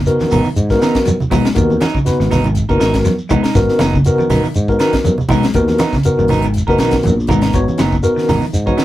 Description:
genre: afrobeat.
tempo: 120 BPM.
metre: 4/4.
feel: swing 54% on 16ths.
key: G# minor.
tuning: A4 = 440 Hz.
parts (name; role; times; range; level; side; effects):
semi-hollow electric guitar; arpeggios; 0.0-8.8 s; C#3 to G#3; -21 LUFS; left 1 dB; none.
sustaining fretless electric bass; bass; 0.0-8.7 s; F#1 to G#2; -18 LUFS; equal; none.
tine electric piano; accompaniment; 0.1-8.8 s; B3 to C#5; -16 LUFS; left 1 dB; medium tremolo.
tight funk drum kit; drums; 0.1-8.8 s; hi-hat, kick drum, snare drum; -20 LUFS; equal; none.
shekere; percussion; 0.1-8.8 s; none; -20 LUFS; equal; none.
congas; percussion; 0.2-8.8 s; none; -19 LUFS; right 1 dB; none.
clean electric guitar; stabs; 0.3-8.8 s; F#3 to A#4; -18 LUFS; right 3 dB; none.
room: wet booth ambience, RT60 0.2 s.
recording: rough rehearsal-room recording.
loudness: -12 LUFS.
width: side -14 dB against mid.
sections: 0.0-8.8 A section.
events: none.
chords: 0.0 G#m9.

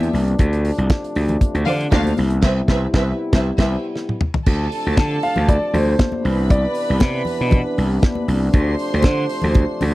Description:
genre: disco.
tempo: 118 BPM.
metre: 4/4.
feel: straight.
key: D dorian.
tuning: A4 = 441 Hz.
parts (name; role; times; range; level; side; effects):
dark studio string section; second line; 0.0-9.9 s; C4 to C6; -25 LUFS; right 2 dB; none.
mellow French horn section; sustained chords; 0.0-9.9 s; C3 to E4; -26 LUFS; left 1 dB; none.
gritty slap bass; bass; 0.0-9.9 s; C2 to D3; -19 LUFS; equal; overdrive.
damped 70s drum kit; drums; 0.0-9.9 s; crash cymbal, hi-hat, kick drum, snare drum, toms; -16 LUFS; equal; none.
congas; percussion; 0.0-9.9 s; none; -26 LUFS; left 3 dB; none.
warm grand piano; melody; 5.2-7.5 s; C5 to F5; -23 LUFS; equal; none.
room: little or no reverb.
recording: dry, close 1970s-style studio recording.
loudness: -16 LUFS.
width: side -18 dB against mid.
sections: 0.0-4.5 A section; 4.5-9.9 B section.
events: band accent 2.4-4.5; drum fill 4.0-4.5.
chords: 0.4 Dm7; 2.2 Cmaj7; 4.5 Dm7; 6.2 Cmaj9; 8.5 Dm7.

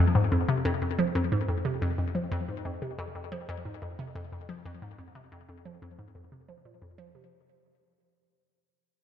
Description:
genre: ambient.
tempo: 90 BPM.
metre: 4/4.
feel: straight.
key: unclear.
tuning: A4 = 439 Hz.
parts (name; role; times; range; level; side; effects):
hollow square pluck; solo; 0.0-7.3 s; F2 to F3; -27 LUFS; left 1 dB; chorus, ping-pong delay.
room: moderate plate reverb, RT60 3.0 s.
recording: echo-heavy mix.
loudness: -28 LUFS.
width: side -10 dB against mid.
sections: 0.0-7.3 A section.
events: fade-out 0.0-7.3.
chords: none.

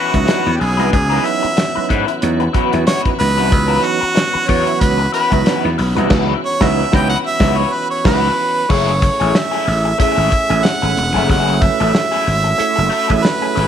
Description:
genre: funk.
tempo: 93 BPM.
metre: 4/4.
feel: swing 56% on 16ths.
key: C# minor.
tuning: A4 = 439 Hz.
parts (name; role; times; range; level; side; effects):
bright harmonica; melody; 0.0-13.7 s; F#4 to G5; -18 LUFS; right 3 dB; none.
raw garage guitar; accompaniment; 0.0-13.7 s; A3 to C#5; -21 LUFS; left 11 dB; wah, overdrive.
tonewheel organ; sustained chords; 0.0-13.7 s; E3 to G#4; -26 LUFS; equal; chorus vibrato, stopped rotary speaker.
percussive tonewheel organ; stabs; 0.1-13.6 s; E3 to B4; -22 LUFS; right 11 dB; chorus vibrato, slow rotary speaker.
gritty slap bass; bass; 0.1-13.7 s; E1 to G#2; -18 LUFS; left 1 dB; overdrive.
warm soul drum kit; drums; 0.1-13.7 s; crash cymbal, hi-hat, kick drum, snare drum; -19 LUFS; equal; none.
room: moderate echo chamber reverb, RT60 2.2 s.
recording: 1960s-style stereo with parts hard left and right.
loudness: -13 LUFS.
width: side -9 dB against mid.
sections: 0.0-8.7 A section; 8.7-13.7 B section.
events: harmonica solo 0.0-8.7; band accent 6.1-8.7.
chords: 0.0 C#m11; 8.7 F#m9.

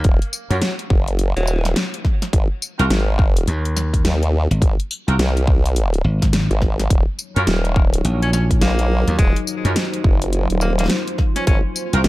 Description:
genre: glitch hop.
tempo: 105 BPM.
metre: 4/4.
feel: swing 62% on 16ths.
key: Eb dorian.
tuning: A4 = 440 Hz.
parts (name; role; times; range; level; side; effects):
edgy tenor saxophone; melody; 0.0-1.8, 8.2-11.6 s; Gb3 to Db4; -27 LUFS; left 1 dB; ping-pong delay.
formant-sweep wobble bass; bass; 0.0-12.1 s; Eb1 to Eb2; -18 LUFS; equal; chorus, tube saturation.
slap bass; bass; 0.0-12.0 s; Ab1 to Gb2; -18 LUFS; equal; none.
dubstep drum kit; drums; 0.0-12.1 s; hi-hat, snare drum, tambourine; -24 LUFS; left 1 dB; none.
electronic kick drum; drums; 0.0-11.6 s; none; -16 LUFS; equal; none.
clear horn section; stabs; 0.5-12.0 s; C4 to Bb4; -26 LUFS; right 1 dB; sidechain pumping, ping-pong delay.
dark analog pad; sustained chords; 7.3-12.1 s; Gb3 to Db5; -26 LUFS; equal; chorus, sidechain pumping.
room: little or no reverb.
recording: dark, warm production.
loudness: -16 LUFS.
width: side -18 dB against mid.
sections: 0.0-12.1 A section.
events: none.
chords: 0.0 Ebm; 2.3 Ab; 6.9 Ebm9; 11.5 Ab13.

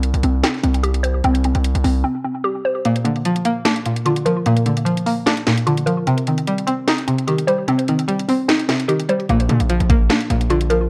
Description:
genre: hip hop, trap.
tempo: 149 BPM.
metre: 4/4.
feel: half-time.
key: unclear.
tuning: A4 = 440 Hz.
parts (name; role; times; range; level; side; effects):
hollow square pluck; arpeggios; 0.0-10.9 s; Bb3 to C5; -23 LUFS; equal; chorus, low-pass filter, delay.
distorted 808-style bass; bass; 0.0-2.0, 9.3-10.9 s; Bb1 to Bb2; -20 LUFS; equal; distortion.
trap drum kit; drums; 0.0-10.8 s; hi-hat, kick drum, snare drum; -24 LUFS; equal; none.
string-like resonator pluck; accompaniment; 2.9-10.9 s; Bb2 to Eb4; -22 LUFS; equal; chorus, phaser, low-pass filter.
room: light reverb.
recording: worn, warbling old tape, cassette tape, warbly pitch drift.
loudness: -18 LUFS.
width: mono.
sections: 0.0-10.9 A section.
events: break 2.0-2.9; kick muted 2.9-9.3.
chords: 0.0 C5; 2.9 Bb; 6.1 Cm; 9.3 Bb.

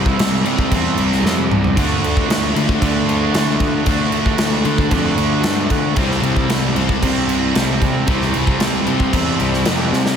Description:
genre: hard rock.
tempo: 114 BPM.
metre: 4/4.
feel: straight.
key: unclear.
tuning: A4 = 441 Hz.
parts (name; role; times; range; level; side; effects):
cranked stack guitar; riff; 0.0-10.2 s; C3 to D4; -21 LUFS; right 8 dB; overdrive.
distorted electric guitar; riff; 0.0-10.2 s; C3 to F4; -24 LUFS; equal; distortion, slapback echo.
sludgy distorted guitar; riff; 0.0-10.2 s; C3 to D4; -22 LUFS; left 10 dB; overdrive, slapback echo.
fuzz picked electric bass; bass; 0.0-10.2 s; C2 to D3; -22 LUFS; equal; overdrive.
big rock drum kit; drums; 0.1-10.2 s; crash cymbal, kick drum, snare drum, toms; -19 LUFS; equal; none.
room: moderate lush hall reverb, RT60 1.6 s, studio ambience.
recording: big arena sound.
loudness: -14 LUFS.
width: side -7 dB against mid.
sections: 0.0-10.2 A section.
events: drum fill 1.2-1.8, 9.9.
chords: 0.0 C; 1.8 Dm; 6.0 C.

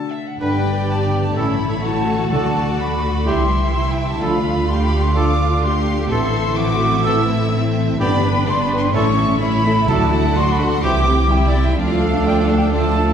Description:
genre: cinematic.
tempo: 127 BPM.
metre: 4/4.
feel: straight.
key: unclear.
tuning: A4 = 441 Hz.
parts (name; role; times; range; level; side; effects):
rich symphonic violin section; melody; 0.0-13.1 s; D5 to E6; -31 LUFS; left 3 dB; none.
concert harp; arpeggios; 0.0-13.1 s; G2 to C5; -24 LUFS; left 4 dB; none.
concert flute; second line; 0.1-13.1 s; D5 to E6; -23 LUFS; equal; none.
rich chamber violin section; second line; 0.4-13.1 s; E4 to G5; -27 LUFS; left 2 dB; none.
rich symphonic viola section; accompaniment; 0.4-13.1 s; E3 to B4; -24 LUFS; right 1 dB; none.
dark trombone section; sustained chords; 0.4-13.1 s; D3 to E4; -26 LUFS; right 1 dB; none.
clear trumpet; stabs; 0.4-13.1 s; G4 to B4; -27 LUFS; right 2 dB; none.
rich symphonic double bass section; bass; 0.4-13.1 s; G1 to D2; -20 LUFS; right 1 dB; none.
warm symphonic cello section; bass; 0.4-13.1 s; C4 to B4; -25 LUFS; right 1 dB; none.
timpani; percussion; 2.3-3.0, 9.9-10.6 s; D3; -27 LUFS; equal; none.
room: wet scoring stage reverb, RT60 1.6 s.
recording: heard from further back in the room.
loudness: -15 LUFS.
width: side -8 dB against mid.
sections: 0.4-13.1 A section.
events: none.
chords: 0.4 G; 1.4 A; 2.3 D; 3.3 C; 4.2 Dm; 6.1 Amadd9; 8.0 G; 8.9 A; 9.9 D; 10.8 C; 11.8 Dm.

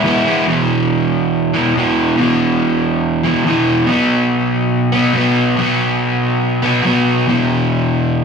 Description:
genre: rock.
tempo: 141 BPM.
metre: 4/4.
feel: straight.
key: unclear.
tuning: A4 = 436 Hz.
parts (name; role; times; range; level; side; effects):
overdriven semi-hollow guitar; solo; 0.0-8.2 s; E2 to E4; -13 LUFS; equal; none.
room: moderate club reverb, RT60 0.7 s.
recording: live gig heard through the venue's PA, club reverb.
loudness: -13 LUFS.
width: side -6 dB against mid.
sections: 0.5-8.2 A section.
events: none.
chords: 0.5 E5; 3.9 B5; 7.3 E5.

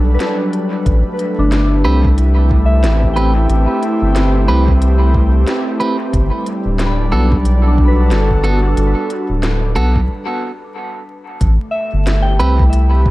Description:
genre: ambient dub.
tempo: 91 BPM.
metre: 4/4.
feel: swing 60% on 16ths.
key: A dorian.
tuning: A4 = 439 Hz.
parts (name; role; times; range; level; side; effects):
airy breathy pad; sustained chords; 0.0-13.1 s; F#3 to B4; -19 LUFS; equal; chorus.
soft synth bell; arpeggios; 0.0-13.1 s; D4 to B5; -24 LUFS; left 2 dB; chorus, phaser, tape echo.
round analog bass; bass; 0.0-13.1 s; D1 to C2; -13 LUFS; equal; none.
organic electronic drum kit; drums; 0.2-12.9 s; hi-hat, snare drum; -26 LUFS; equal; dub echo.
electronic kick drum; drums; 0.9-13.1 s; none; -17 LUFS; equal; none.
clean electric guitar; stabs; 1.8-12.6 s; B3 to B4; -23 LUFS; right 2 dB; tremolo, low-pass filter, dub echo.
room: light reverb.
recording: vinyl crackle.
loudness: -12 LUFS.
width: side -18 dB against mid.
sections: 0.0-11.4 A section; 11.4-13.1 B section.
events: break 10.1-11.4.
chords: 0.0 Gmaj7; 0.9 Am7; 6.1 Gmaj7; 11.4 Am7.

